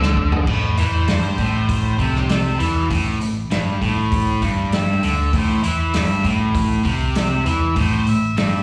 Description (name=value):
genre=blues rock power trio and southern rock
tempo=99 BPM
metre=4/4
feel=straight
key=A minor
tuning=A4 = 437 Hz
part: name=octave-fuzz lead guitar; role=melody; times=0.0-8.6 s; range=G4 to E5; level=-29 LUFS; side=equal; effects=distortion, slapback echo
part: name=distorted electric guitar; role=riff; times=0.0-8.6 s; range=G2 to E3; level=-23 LUFS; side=equal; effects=distortion, slapback echo
part: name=picked electric bass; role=bass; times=0.0-8.6 s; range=G1 to E2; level=-24 LUFS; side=equal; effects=none
part: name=vintage drum kit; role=drums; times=0.0-8.5 s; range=crash cymbal, hi-hat, kick drum, snare drum, toms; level=-25 LUFS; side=equal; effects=none
room=light reverb, studio ambience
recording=live gig heard through the venue's PA, club reverb, small room ambience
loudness=-19 LUFS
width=mono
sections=0.5-8.6 A section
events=drum fill 0.0-0.5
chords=0.5 Am